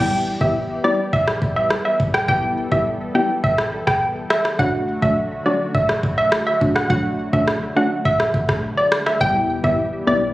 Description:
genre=dancehall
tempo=104 BPM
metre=4/4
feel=straight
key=E minor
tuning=A4 = 436 Hz
part: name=hollow square pluck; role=melody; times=0.0-10.2 s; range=D5 to G5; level=-20 LUFS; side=equal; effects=chorus, tape echo
part: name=punchy chord stab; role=accompaniment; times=0.0-10.2 s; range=F#3 to G4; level=-22 LUFS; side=left 1 dB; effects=chorus, sidechain pumping
part: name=warm analog pad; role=sustained chords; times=0.0-10.3 s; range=D3 to A4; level=-28 LUFS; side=equal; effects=chorus, tremolo, sidechain pumping
part: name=afro-pop drum kit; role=drums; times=0.4-9.8 s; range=kick drum, rim click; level=-21 LUFS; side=equal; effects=none
part: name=sub bass with octave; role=bass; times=9.2-10.3 s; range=E1 to B1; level=-29 LUFS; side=equal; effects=none
room=light reverb, digital ambience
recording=recorded on a phone in the room, studio reverb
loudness=-17 LUFS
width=side -17 dB against mid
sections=0.0-10.3 A section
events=none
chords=0.0 Em; 4.6 D; 9.2 Em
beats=0.55 1.13 1.71 | 2.28 2.86 3.44 4.01 | 4.59 5.17 5.75 6.32 | 6.90 7.48 8.05 8.63 | 9.21 9.78

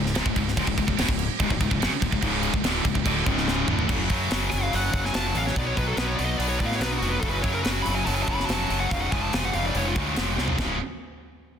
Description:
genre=heavy metal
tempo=143 BPM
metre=4/4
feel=straight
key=C# phrygian dominant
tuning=A4 = 439 Hz
part: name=distorted electric guitar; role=riff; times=0.0-10.8 s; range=C#2 to B3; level=-29 LUFS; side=left 11 dB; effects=overdrive
part: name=heavy high-gain guitar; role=riff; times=0.0-10.8 s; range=C#2 to B3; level=-30 LUFS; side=right 15 dB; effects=distortion
part: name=thick fuzz guitar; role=riff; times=0.0-3.9 s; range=C#2 to D3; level=-31 LUFS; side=equal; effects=distortion
part: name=fuzz fingered electric bass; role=bass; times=0.0-10.8 s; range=C#1 to A2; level=-29 LUFS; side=equal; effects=overdrive
part: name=tight metal drum kit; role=drums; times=0.1-10.7 s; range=crash cymbal, hi-hat, kick drum, snare drum, toms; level=-28 LUFS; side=equal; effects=none
part: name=high-gain lead guitar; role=melody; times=4.5-9.9 s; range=D4 to B5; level=-29 LUFS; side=equal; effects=distortion, digital delay
room=small room ambience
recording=dense, heavily limited modern master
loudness=-22 LUFS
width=side -8 dB against mid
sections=0.0-3.9 A section; 3.9-10.6 B section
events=drum fill 3.5-3.9, 10.4; lead electric guitar solo 3.9-10.6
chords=0.0 C#5; 3.9 F#5; 5.6 B5; 7.2 F#5; 8.9 C#/E#; 10.6 C#5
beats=0.15 | 0.57 0.98 1.40 1.81 | 2.23 2.64 3.06 3.47 | 3.89 4.31 4.72 5.14 | 5.56 5.98 6.40 6.82 | 7.24 7.66 8.07 8.49 | 8.91 9.33 9.76 10.18 | 10.60

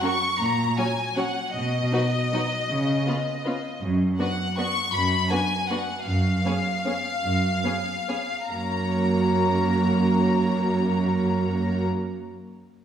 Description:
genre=classical, orchestral ballroom waltz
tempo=133-172 BPM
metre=3/4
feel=rubato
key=F# major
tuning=A4 = 440 Hz
part: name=clear studio violin section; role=melody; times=0.0-11.9 s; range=D#5 to C#6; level=-27 LUFS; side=left 3 dB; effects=none
part: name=rich studio violin section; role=second line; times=0.0-11.9 s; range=E#4 to C#5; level=-34 LUFS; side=left 2 dB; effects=none
part: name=rich studio viola section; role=accompaniment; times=0.0-11.8 s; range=F#3 to F#4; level=-29 LUFS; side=right 2 dB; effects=none
part: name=rich studio cello section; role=bass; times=0.4-11.9 s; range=F#2 to C#3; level=-25 LUFS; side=right 2 dB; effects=none
room=wet scoring stage reverb, RT60 1.6 s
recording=heard from further back in the room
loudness=-22 LUFS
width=side -9 dB against mid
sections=0.0-8.5 A section; 8.5-11.1 B section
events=slowing down 5.5-8.5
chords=0.4 F#/A#; 1.5 B; 2.7 C#7(no3); 3.8 Bm/F#; 6.1 C#7/F#; 8.5 F#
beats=0.02 | 0.40 0.78 1.17 | 1.55 1.93 2.32 | 2.69 3.06 3.45 | 3.81 4.18 4.57 | 4.94 5.30 5.69 | 6.06 6.44 6.84 | 7.23 7.64 8.08 | 8.50 8.93 9.38 | 9.80 10.22 10.67

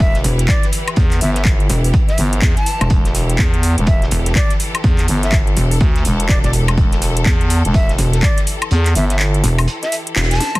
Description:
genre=bass house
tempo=124 BPM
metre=4/4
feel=swing 61% on 16ths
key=E minor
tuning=A4 = 440 Hz
part: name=breathy silver concert flute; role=melody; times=0.0-10.6 s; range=D5 to A5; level=-26 LUFS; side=left 1 dB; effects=dub echo
part: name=clear studio string section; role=sustained chords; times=0.0-10.6 s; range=E3 to B4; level=-27 LUFS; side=left 2 dB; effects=sidechain pumping
part: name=growling FM bass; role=bass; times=0.0-9.4 s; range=E1 to E2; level=-17 LUFS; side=equal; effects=overdrive, sidechain pumping
part: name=cloth-damped thuddy drum kit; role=drums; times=0.0-10.5 s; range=hi-hat, snare drum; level=-32 LUFS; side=right 2 dB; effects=sidechain pumping on hats, high-pass filter on hats, high-pass filter on snare, high-pass filter on room
part: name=electronic kick drum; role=drums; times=0.0-8.3 s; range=none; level=-15 LUFS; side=equal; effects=overdrive
part: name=house drum kit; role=drums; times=0.1-10.6 s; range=handclaps, hi-hat, snare drum, toms, woodblock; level=-22 LUFS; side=left 1 dB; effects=overdrive
part: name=pulsing pluck wobble bass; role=bass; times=0.2-10.4 s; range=E1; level=-15 LUFS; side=equal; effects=chorus, overdrive, sidechain pumping
room=small room ambience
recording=dense, heavily limited modern master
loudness=-13 LUFS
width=side -20 dB against mid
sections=0.0-10.6 A section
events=kick drops out 8.7-10.6; band accent 10.2; drum fill 10.4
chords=0.0 Em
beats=0.00 0.48 | 0.97 1.45 1.94 2.42 | 2.90 3.39 3.87 4.36 | 4.84 5.32 5.81 6.29 | 6.78 7.26 7.74 8.23 | 8.71 9.20 9.68 10.16

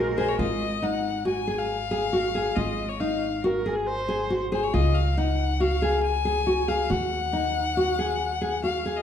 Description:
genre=contemporary instrumental, contemporary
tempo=138 BPM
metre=5/4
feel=straight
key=unclear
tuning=A4 = 441 Hz
part: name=rich viola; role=second line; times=0.0-4.4 s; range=Ab4 to C5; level=-31 LUFS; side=right 2 dB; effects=none
part: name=nylon-string guitar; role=arpeggios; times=0.0-9.0 s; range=Eb4 to Ab4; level=-26 LUFS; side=left 1 dB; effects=none
part: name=upright bass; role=bass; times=0.0-9.0 s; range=Ab1 to Eb2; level=-29 LUFS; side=right 1 dB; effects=none
part: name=clear violin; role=melody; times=0.2-9.0 s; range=C5 to Ab5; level=-29 LUFS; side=left 7 dB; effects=none
room=wet recital hall reverb, RT60 1.3 s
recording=dark, warm production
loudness=-23 LUFS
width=side -9 dB against mid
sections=0.4-9.0 A section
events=none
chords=0.4 Ab5; 4.7 Dbadd9; 6.9 Ebm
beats=| 0.39 0.82 1.26 1.69 2.13 | 2.56 3.00 3.43 3.87 4.30 | 4.74 5.17 5.60 6.04 6.47 | 6.90 7.34 7.77 8.20 8.64

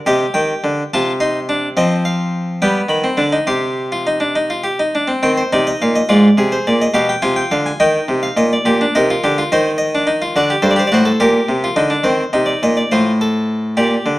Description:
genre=classical, baroque-style 3-part fugue for harpsichord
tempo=70 BPM (dotted quarters)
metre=6/8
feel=straight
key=C minor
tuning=A4 = 440 Hz
part: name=harpsichord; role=solo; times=0.0-14.2 s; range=G2 to C6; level=-13 LUFS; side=equal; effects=none
room=moderate large studio reverb, RT60 1.4 s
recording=dark, warm production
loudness=-13 LUFS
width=side -18 dB against mid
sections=0.0-5.2 A section; 5.2-12.1 B section; 12.1-14.2 A section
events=none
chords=0.1 Cm; 0.9 Adim/C; 1.8 F5; 2.6 G; 3.5 Cm; 6.1 Fm/Ab; 7.0 G7/B; 7.8 Gm; 9.5 Cm/Eb; 10.4 D7; 11.2 Gm/Bb; 12.1 Cm; 12.9 F/A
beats=| 0.07 0.92 | 1.77 2.62 | 3.49 4.36 | 5.24 6.10 | 6.96 7.82 | 8.67 9.51 | 10.36 11.21 | 12.06 12.92 | 13.77

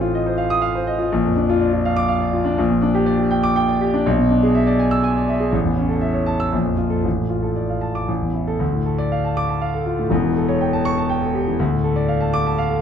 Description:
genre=classical, virtuoso piano study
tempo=122 BPM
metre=3/4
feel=rubato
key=D minor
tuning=A4 = 439 Hz
part: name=warm concert grand piano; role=solo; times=0.0-12.8 s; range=E1 to E6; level=-17 LUFS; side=equal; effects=none
room=moderate large studio reverb, RT60 1.1 s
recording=dark, warm production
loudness=-17 LUFS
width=side -8 dB against mid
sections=0.0-8.6 A section; 8.6-12.8 B section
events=none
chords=0.0 F7/A; 1.1 Bb; 2.6 Gm/Bb; 4.1 E7/B; 5.5 A; 6.5 Bb5; 7.0 Dm/A; 8.1 A5; 8.6 Dm; 10.1 A7/E; 11.6 Dm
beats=0.14 0.63 | 1.12 1.61 2.10 | 2.59 3.07 3.56 | 4.05 4.54 5.03 | 5.53 6.02 6.53 | 7.05 7.57 8.09 | 8.61 9.11 9.61 | 10.11 10.61 11.10 | 11.60 12.09 12.58

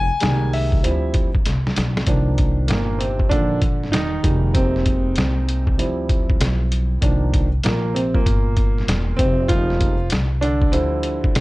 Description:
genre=hip hop, jazz-hop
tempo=97 BPM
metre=4/4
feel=swing 64% on 16ths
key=C minor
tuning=A4 = 439 Hz
part: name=warm upright piano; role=accompaniment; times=0.0-11.4 s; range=Bb2 to Ab5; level=-22 LUFS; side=right 1 dB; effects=none
part: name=upright bass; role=bass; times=0.0-11.4 s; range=E1 to D2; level=-22 LUFS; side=equal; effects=none
part: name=trip hop sampler-style drum kit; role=drums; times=0.2-11.4 s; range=hi-hat, kick drum, snare drum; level=-20 LUFS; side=equal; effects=none
room=small room ambience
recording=dry, gritty hardware recording, cassette tape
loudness=-17 LUFS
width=side -20 dB against mid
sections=0.0-2.1 A section; 2.1-11.4 B section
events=upright piano solo 0.0-2.1, 2.1-11.4; drum fill 1.5-2.1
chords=0.0 Fm11 (rootless); 0.8 Dm11; 2.1 Cm11; 4.2 Fm11; 5.8 Dm11; 7.0 Cm11; 9.2 Fm11; 10.7 Dm11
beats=0.22 0.84 1.46 | 2.07 2.69 3.31 3.93 | 4.55 5.17 5.79 6.40 | 7.02 7.64 8.26 8.88 | 9.50 10.12 10.73 11.35

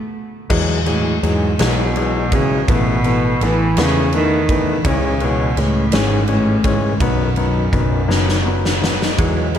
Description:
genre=six-eight pop ballad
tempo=55 BPM (dotted quarters)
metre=6/8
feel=straight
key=E major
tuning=A4 = 435 Hz
part: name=warm cello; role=melody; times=0.0-9.6 s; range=F#2 to A3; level=-19 LUFS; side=right 1 dB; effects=analog delay
part: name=clear concert grand piano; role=accompaniment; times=0.5-9.6 s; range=D#3 to C#4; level=-20 LUFS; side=left 4 dB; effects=slapback echo
part: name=vintage muted fingered electric bass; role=bass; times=0.5-9.6 s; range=F#1 to E2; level=-21 LUFS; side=right 1 dB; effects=none
part: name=huge arena drum kit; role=drums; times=0.5-9.6 s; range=crash cymbal, kick drum, ride cymbal, snare drum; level=-21 LUFS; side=equal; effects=none
part: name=direct-recorded clean electric guitar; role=arpeggios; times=9.2-9.6 s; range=F#3 to E4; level=-26 LUFS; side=right 9 dB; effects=lush chorus, slapback echo
room=moderate lush hall reverb, RT60 2.8 s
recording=big arena sound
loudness=-14 LUFS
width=side -9 dB against mid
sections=0.5-9.6 A section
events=stop 0.0-0.5; drum fill 8.1-9.2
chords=0.0 N.C.; 0.5 Eadd9; 2.7 Asus2; 4.8 C#m; 7.0 B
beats=| 0.50 1.60 | 2.69 3.77 | 4.85 5.93 | 7.01 8.09 | 9.18

